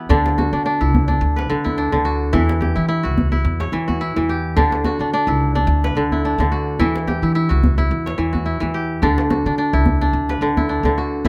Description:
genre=west african traditional, West African string and xylophone music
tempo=108 BPM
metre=4/4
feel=swing 54% on 16ths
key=D major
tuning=A4 = 437 Hz
part: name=kora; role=arpeggios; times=0.0-11.3 s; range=D3 to C#5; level=-22 LUFS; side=equal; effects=none
part: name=upright bass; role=bass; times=0.1-11.3 s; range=C#2 to E3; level=-23 LUFS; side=equal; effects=none
part: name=djembe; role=percussion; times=0.1-11.3 s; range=none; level=-25 LUFS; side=equal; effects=none
room=little or no reverb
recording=close, detailed microphones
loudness=-19 LUFS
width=mono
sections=0.1-11.3 A section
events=none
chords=0.1 D; 2.3 Em

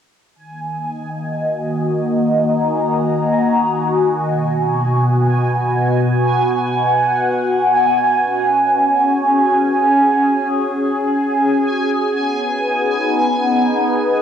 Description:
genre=ambient, sequencer-driven space music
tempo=free time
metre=none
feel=none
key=Eb minor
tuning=A4 = 440 Hz
part: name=phased analog pad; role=sustained chords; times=0.4-14.2 s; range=B2 to Bb5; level=-16 LUFS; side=left 1 dB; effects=phaser, chorus, cassette tape
part: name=bubbling stepped-filter texture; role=texture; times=0.5-14.2 s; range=Ab5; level=-19 LUFS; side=right 3 dB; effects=chorus, built-in reverb, cassette tape
room=wet booth ambience, RT60 0.2 s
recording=home recording on cassette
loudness=-14 LUFS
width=side -8 dB against mid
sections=0.4-14.2 A section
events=none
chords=0.4 Ebm; 4.3 B; 8.2 Gbsus2

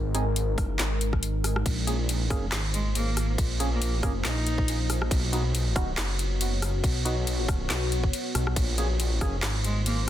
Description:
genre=deep dubstep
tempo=139 BPM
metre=4/4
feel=swing 55% on 16ths, half-time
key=unclear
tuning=A4 = 440 Hz
part: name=deep dark ambient pad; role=sustained chords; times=0.0-10.1 s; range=Ab3 to Db5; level=-34 LUFS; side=left 2 dB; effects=chorus, built-in reverb
part: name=dark detuned saw bass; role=bass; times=0.0-10.1 s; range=F#1 to B1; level=-27 LUFS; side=equal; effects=none
part: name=percussive organ stab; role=stabs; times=0.1-9.4 s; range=Bb3 to Ab4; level=-36 LUFS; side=right 2 dB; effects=lush chorus, cassette tape, dub echo
part: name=garage drum kit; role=drums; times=0.1-10.0 s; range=crash cymbal, handclaps, hi-hat, rim click, snare drum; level=-31 LUFS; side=equal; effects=none
part: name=electronic kick drum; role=drums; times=0.6-9.3 s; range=none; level=-27 LUFS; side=equal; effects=none
part: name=rich cello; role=melody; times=2.7-4.9, 9.6-10.1 s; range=Ab3 to Eb4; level=-35 LUFS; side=equal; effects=dub echo
room=digital ambience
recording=dense, heavily limited modern master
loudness=-24 LUFS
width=side -12 dB against mid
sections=0.0-10.1 A section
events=none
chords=0.0 Ab; 1.7 Bbm7; 5.1 B; 8.6 Bbm7

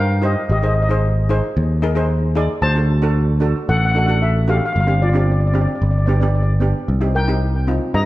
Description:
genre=calypso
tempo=113 BPM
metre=4/4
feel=straight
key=C minor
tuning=A4 = 444 Hz
part: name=steel pan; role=melody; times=0.0-8.1 s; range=F4 to Bb5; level=-22 LUFS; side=left 2 dB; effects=tape echo
part: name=steel pan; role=accompaniment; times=0.0-8.0 s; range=B3 to D5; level=-23 LUFS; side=right 1 dB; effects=none
part: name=picked electric bass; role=bass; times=0.0-8.1 s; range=G1 to G2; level=-16 LUFS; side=equal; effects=none
room=moderate recital hall reverb, RT60 1.7 s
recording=dark, warm production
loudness=-15 LUFS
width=side -16 dB against mid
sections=0.0-8.1 A section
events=none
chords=0.0 Cm7; 0.5 Ab; 2.6 D7; 4.8 Gsus4; 5.8 G; 6.9 Cm7

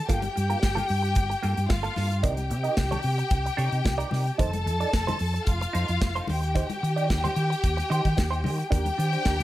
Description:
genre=disco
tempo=111 BPM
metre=4/4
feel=straight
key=unclear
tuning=A4 = 440 Hz
part: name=warm studio string section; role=second line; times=0.0-9.4 s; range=F4 to A5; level=-29 LUFS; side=left 2 dB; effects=none
part: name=clean electric guitar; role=accompaniment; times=0.1-9.4 s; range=Bb3 to Eb5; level=-33 LUFS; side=right 6 dB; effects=wah
part: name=hollow-body short-scale fingered electric bass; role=bass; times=0.1-9.4 s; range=F1 to Eb3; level=-27 LUFS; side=equal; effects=none
part: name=modern studio drum kit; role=drums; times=0.1-9.4 s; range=hi-hat, kick drum, snare drum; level=-28 LUFS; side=equal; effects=none
part: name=congas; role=percussion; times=0.1-9.4 s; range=none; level=-36 LUFS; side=left 3 dB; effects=none
room=light reverb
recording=none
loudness=-23 LUFS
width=side -15 dB against mid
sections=0.0-8.7 A section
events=none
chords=0.1 Gm9; 2.2 Cm9; 4.4 F7; 6.3 Eb6; 8.7 Ebmaj7

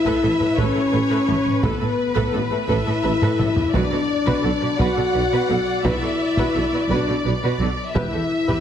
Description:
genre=cinematic, epic orchestral film score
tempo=57 BPM (dotted quarters)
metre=6/8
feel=straight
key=unclear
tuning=A4 = 439 Hz
part: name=warm symphonic violin section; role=melody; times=0.0-8.6 s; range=B4 to E5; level=-29 LUFS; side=left 3 dB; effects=none
part: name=warm symphonic violin section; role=second line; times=0.0-8.6 s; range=B4 to F#5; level=-28 LUFS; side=left 2 dB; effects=none
part: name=mellow French horn section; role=sustained chords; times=0.0-8.6 s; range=B3 to F#4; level=-22 LUFS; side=left 3 dB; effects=none
part: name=warm symphonic viola section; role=accompaniment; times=0.1-8.6 s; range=F#4 to B4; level=-27 LUFS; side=right 3 dB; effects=none
part: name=rich symphonic cello section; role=bass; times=0.1-8.6 s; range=E2 to B2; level=-27 LUFS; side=right 2 dB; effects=none
part: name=taiko ensemble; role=drums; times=0.1-8.6 s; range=none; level=-25 LUFS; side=equal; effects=none
part: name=mellow tuba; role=bass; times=0.2-8.0 s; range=E1 to B1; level=-30 LUFS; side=right 3 dB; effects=none
part: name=rich studio double bass section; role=bass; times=0.2-8.0 s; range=E1 to B1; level=-29 LUFS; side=right 3 dB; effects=none
room=moderate scoring stage reverb, RT60 1.6 s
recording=heavily compressed radio sound, multiband compression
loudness=-18 LUFS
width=side -9 dB against mid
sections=0.0-8.6 A section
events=drum fill 3.2-3.7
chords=0.0 Asus2; 3.7 Bm; 8.0 Em

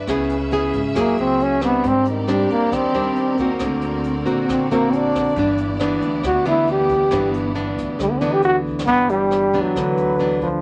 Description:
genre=bossa nova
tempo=136 BPM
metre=4/4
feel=straight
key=G major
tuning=A4 = 439 Hz
part: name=nylon-string guitar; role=accompaniment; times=0.0-10.6 s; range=G2 to G#4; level=-24 LUFS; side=equal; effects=none
part: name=clear studio string section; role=sustained chords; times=0.0-8.8 s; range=A#3 to E5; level=-32 LUFS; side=equal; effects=none
part: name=upright bass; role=bass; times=0.0-10.6 s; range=G1 to Ab2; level=-33 LUFS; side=equal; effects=none
part: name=jazz brush drum kit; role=drums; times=0.1-10.5 s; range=hi-hat, kick drum, rim click, snare drum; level=-36 LUFS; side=equal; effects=none
part: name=warm trombone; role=melody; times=1.0-10.6 s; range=Eb3 to G4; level=-21 LUFS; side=equal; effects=none
part: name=breathy mellow small flute group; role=second line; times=8.9-10.6 s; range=G4 to B4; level=-28 LUFS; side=equal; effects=none
room=moderate small room reverb, RT60 0.5 s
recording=none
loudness=-19 LUFS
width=mono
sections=0.0-8.9 A section; 8.9-10.6 B section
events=trombone solo 0.0-8.9; drum fill 8.7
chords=0.1 C#m7; 1.0 F#9; 1.8 Abmaj9#11; 3.6 Daug7; 5.4 G6

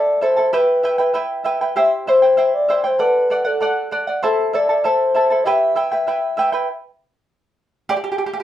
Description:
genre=andean folk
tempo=98 BPM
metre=2/4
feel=straight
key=E minor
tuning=A4 = 440 Hz
part: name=pure breathy sine lead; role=melody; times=0.0-6.4 s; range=A4 to E5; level=-16 LUFS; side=left 1 dB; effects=chorus
part: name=charango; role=accompaniment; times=0.0-8.4 s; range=E4 to A5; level=-20 LUFS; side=right 2 dB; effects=none
room=wet studio ambience, RT60 0.5 s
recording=heard from further back in the room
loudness=-15 LUFS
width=side -12 dB against mid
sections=0.0-6.7 A section; 6.7-8.4 B section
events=charango solo 6.7-8.4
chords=0.0 Am; 0.5 Em; 1.8 C; 3.0 D; 4.2 Am; 5.4 Em; 6.7 N.C.

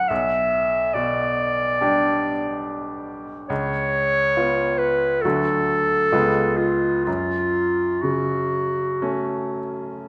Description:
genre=classical, romantic duo for clarinet and grand piano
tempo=61-71 BPM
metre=4/4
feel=rubato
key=F# minor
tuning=A4 = 440 Hz
part: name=clear clarinet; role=melody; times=0.0-10.0 s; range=E#4 to E5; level=-23 LUFS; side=equal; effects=none
part: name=bright baby grand piano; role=accompaniment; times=0.0-10.1 s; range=B1 to A4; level=-28 LUFS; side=equal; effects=none
room=wet scoring stage reverb, RT60 1.6 s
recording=none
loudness=-22 LUFS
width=mono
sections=0.0-10.1 A section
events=none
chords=0.1 G/B; 3.5 C#7; 5.2 D; 6.1 C#7; 7.1 F#m

